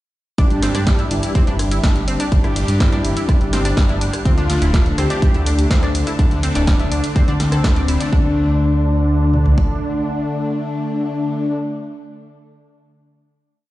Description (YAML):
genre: melodic techno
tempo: 124 BPM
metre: 4/4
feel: straight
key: unclear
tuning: A4 = 440 Hz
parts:
  - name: mellow synth brass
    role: melody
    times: 0.4-11.5 s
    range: C4 to G4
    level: -26 LUFS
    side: right 1 dB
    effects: chorus, sidechain pumping, digital delay
  - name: analog pluck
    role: arpeggios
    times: 0.4-8.3 s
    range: C4 to D6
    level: -27 LUFS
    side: equal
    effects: chorus, sidechain pumping, ping-pong delay
  - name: brassy analog pad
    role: stabs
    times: 0.4-11.5 s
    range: D3 to G4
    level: -23 LUFS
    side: left 2 dB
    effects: chorus, sidechain pumping, ping-pong delay
  - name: fat analog bass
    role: bass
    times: 0.4-9.5 s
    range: D1 to G2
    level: -19 LUFS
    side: equal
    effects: sidechain pumping
  - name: overtone-sweeping drone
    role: drone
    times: 1.8-11.5 s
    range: D3 to D4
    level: -34 LUFS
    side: right 1 dB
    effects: chorus, built-in reverb, sidechain pumping
  - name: house drum kit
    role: drums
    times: 0.4-9.7 s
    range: kick drum, toms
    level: -16 LUFS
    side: equal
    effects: none
  - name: punchy analog drum machine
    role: drums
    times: 0.4-8.1 s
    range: hi-hat, rim click, snare drum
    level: -26 LUFS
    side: equal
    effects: sidechain pumping on hats
room: light reverb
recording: played on a big sound system in a bare room, large studio reverb, nothing above 10.5 kHz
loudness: -15 LUFS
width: side -16 dB against mid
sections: 0.4-8.1 drop; 8.1-12.0 final chord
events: drop 0.4-8.1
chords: 0.4 G5; 4.3 Dm; 8.1 D5